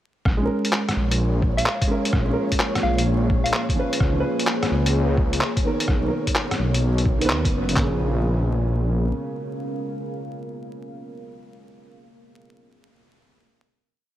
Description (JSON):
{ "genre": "future garage", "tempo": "128 BPM", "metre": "4/4", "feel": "swing 67% on 16ths", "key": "Bb phrygian", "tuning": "A4 = 439 Hz", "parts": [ { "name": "deep dark ambient pad", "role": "sustained chords", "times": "1.7-11.6 s", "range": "Bb3 to A#5", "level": "-30 LUFS", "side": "equal", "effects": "chorus, built-in reverb, sidechain pumping" }, { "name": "swelling detuned saw bass", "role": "bass", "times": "0.3-9.1 s", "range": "F#1 to D#2", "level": "-22 LUFS", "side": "equal", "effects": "sidechain pumping" }, { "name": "lo-fi sampler-style drum kit", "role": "drums", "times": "0.3-7.9 s", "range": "handclaps, kick drum, toms", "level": "-23 LUFS", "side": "equal", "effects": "none" }, { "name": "lo-fi sampler-style drum kit", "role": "drums", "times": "0.3-7.7 s", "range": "handclaps, hi-hat, rim click", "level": "-25 LUFS", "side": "equal", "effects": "none" }, { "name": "flickering grainy texture", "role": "texture", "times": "0.9-7.8 s", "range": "Db5", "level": "-36 LUFS", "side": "right 1 dB", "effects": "built-in reverb" }, { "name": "dark upright piano", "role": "accompaniment", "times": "0.4-11.4 s", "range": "Db3 to Cb5", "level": "-27 LUFS", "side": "right 2 dB", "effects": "sidechain pumping, tape echo" }, { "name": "soft struck synth lead", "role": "melody", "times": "1.6-3.6 s", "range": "F5", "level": "-30 LUFS", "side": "left 1 dB", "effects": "chorus, tape echo" } ], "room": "light reverb", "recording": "vinyl crackle", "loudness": "-20 LUFS", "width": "side -13 dB against mid", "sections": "0.3-7.8 groove; 7.8-11.5 final chord", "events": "none", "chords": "0.3 Bbm7; 4.0 Db7; 5.9 Bmaj7; 7.8 Bbm7" }